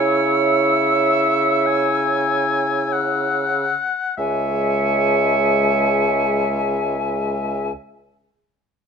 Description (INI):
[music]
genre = classical, slow romantic movement for wind quintet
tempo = free time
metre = none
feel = none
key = C# minor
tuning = A4 = 440 Hz
[part]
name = silver concert flute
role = melody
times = 0.0-7.7 s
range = G#5 to E6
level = -23 LUFS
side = left 5 dB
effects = none
[part]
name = clear oboe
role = second line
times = 0.0-7.7 s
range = E5 to G#5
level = -23 LUFS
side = left 4 dB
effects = none
[part]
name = clear French horn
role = accompaniment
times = 0.0-7.7 s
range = G#3 to E4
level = -27 LUFS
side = left 2 dB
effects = none
[part]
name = warm clarinet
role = accompaniment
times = 0.0-7.7 s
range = C#5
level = -21 LUFS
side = right 8 dB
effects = none
[part]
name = warm bassoon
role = bass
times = 0.0-7.7 s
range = C#2 to C#3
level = -24 LUFS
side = right 2 dB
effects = none
[sound]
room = moderate large studio reverb, RT60 1.0 s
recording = minimal, uncompressed stereo recording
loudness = -16 LUFS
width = side -6 dB against mid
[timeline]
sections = 0.0-4.2 A section; 4.2-8.9 B section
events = slowing down 0.0-4.2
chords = 0.0 C#m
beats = free time